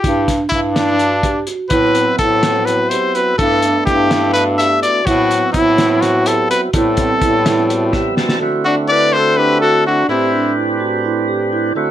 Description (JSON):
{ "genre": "progressive instrumental, band music in an uneven meter", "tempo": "251 BPM (eighths)", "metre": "7/8", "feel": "straight", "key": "A dorian", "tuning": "A4 = 440 Hz", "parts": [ { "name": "clear trumpet", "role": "melody", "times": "0.0-10.5 s", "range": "D4 to E5", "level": "-15 LUFS", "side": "left 2 dB", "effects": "none" }, { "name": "vibraphone with soft mallets", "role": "arpeggios", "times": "0.0-11.9 s", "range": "C4 to G4", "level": "-21 LUFS", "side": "right 6 dB", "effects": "none" }, { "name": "clear bass clarinet", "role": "bass", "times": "0.0-8.2 s", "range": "G2 to A2", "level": "-18 LUFS", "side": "equal", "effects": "none" }, { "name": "cloth-damped thuddy drum kit", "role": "drums", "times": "0.0-8.4 s", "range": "hi-hat, kick drum, snare drum", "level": "-20 LUFS", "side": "equal", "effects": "none" }, { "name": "percussive tonewheel organ", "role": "accompaniment", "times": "1.7-11.9 s", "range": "A2 to A5", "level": "-20 LUFS", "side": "right 1 dB", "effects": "slow rotary speaker" }, { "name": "clear alto saxophone", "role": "second line", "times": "8.7-10.5 s", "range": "C4 to B4", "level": "-21 LUFS", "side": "left 4 dB", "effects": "none" } ], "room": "moderate studio ambience, RT60 0.5 s", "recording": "none", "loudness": "-12 LUFS", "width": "side -11 dB against mid", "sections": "0.0-8.4 A section; 8.4-11.9 B section", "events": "tonewheel organ fill 7.7-8.4; drum fill 7.9-8.4", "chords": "0.0 G5; 1.7 Am69; 3.4 G6; 5.1 Am69; 8.4 D7; 10.1 Am11", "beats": "| 0.04 0.28 0.52 0.76 0.99 1.23 1.47 | 1.71 1.95 2.19 2.43 2.67 2.91 3.15 | 3.38 3.62 3.86 4.10 4.34 4.58 4.82 | 5.06 5.30 5.54 5.78 6.01 6.25 6.49 | 6.73 6.97 7.21 7.45 7.69 7.93 8.17 | 8.41 8.65 8.89 9.12 9.36 9.60 9.84 | 10.08 10.32 10.56 10.80 11.04 11.28 11.52 | 11.76" }